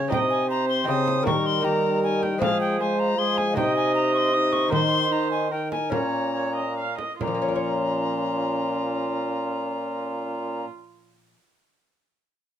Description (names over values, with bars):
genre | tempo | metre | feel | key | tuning
classical, renaissance-style consort dance | 134-158 BPM | 3/4 | straight | Bb dorian | A4 = 438 Hz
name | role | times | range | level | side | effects
rich viola | second line | 0.0-10.6 s | F4 to F5 | -28 LUFS | right 5 dB | none
lute | accompaniment | 0.0-11.5 s | Bb2 to Db5 | -30 LUFS | left 5 dB | none
warm trombone | accompaniment | 0.0-10.7 s | G3 to Eb4 | -29 LUFS | left 2 dB | none
mellow bassoon | bass | 0.0-10.7 s | Bb2 to F3 | -28 LUFS | right 2 dB | none
bright soprano recorder | melody | 0.1-10.7 s | F5 to Eb6 | -28 LUFS | left 4 dB | none
frame drum | percussion | 0.1-7.4 s | none | -31 LUFS | right 4 dB | none
room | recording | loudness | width
light reverb | close, detailed microphones | -22 LUFS | side -9 dB against mid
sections
0.0-7.2 A section; 7.2-9.9 B section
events
slowing down 4.1-7.2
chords
0.1 Cm; 1.3 Eb; 2.4 Fm; 3.6 Cm; 4.7 Eb5; 5.9 Bbm